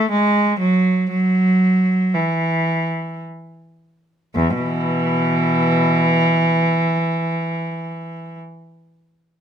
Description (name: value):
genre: classical, baroque-style suite movement for unaccompanied cello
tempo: 52-65 BPM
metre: 3/4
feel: rubato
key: E major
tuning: A4 = 440 Hz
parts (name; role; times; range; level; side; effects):
- rich cello; solo; 0.0-8.4 s; E2 to A3; -16 LUFS; right 1 dB; none
room: light reverb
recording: close, detailed microphones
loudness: -16 LUFS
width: side -8 dB against mid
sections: 0.0-4.3 A section; 4.3-7.6 B section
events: slowing down 0.0-4.3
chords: none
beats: 0.12 | 1.10 2.13 3.21 | 4.34 5.44 6.55